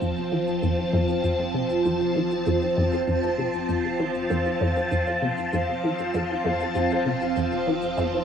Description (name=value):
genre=ambient, sequencer-driven space music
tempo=98 BPM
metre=4/4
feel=straight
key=F major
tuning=A4 = 439 Hz
part: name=phased string machine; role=sustained chords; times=0.0-8.2 s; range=F3 to A5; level=-24 LUFS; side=equal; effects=ensemble chorus, phaser, cassette tape, plate reverb
part: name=resonant blip pluck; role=riff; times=0.0-8.2 s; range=F2 to E3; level=-27 LUFS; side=equal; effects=ensemble chorus, cassette tape, ping-pong delay
part: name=warm sub bass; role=bass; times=0.0-8.2 s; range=F1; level=-51 LUFS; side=equal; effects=none
part: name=cabasa and woodblock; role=percussion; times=0.0-8.2 s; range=none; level=-50 LUFS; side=left 2 dB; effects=none
part: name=pulsing gated texture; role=texture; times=0.0-8.2 s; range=C5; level=-36 LUFS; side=right 6 dB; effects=chorus, built-in reverb, cassette tape, plate reverb
room=wet studio ambience, RT60 0.5 s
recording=home recording on cassette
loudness=-22 LUFS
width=side -8 dB against mid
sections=0.0-8.2 A section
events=filter sweep on synth arpeggio sound 0.0-8.2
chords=0.0 F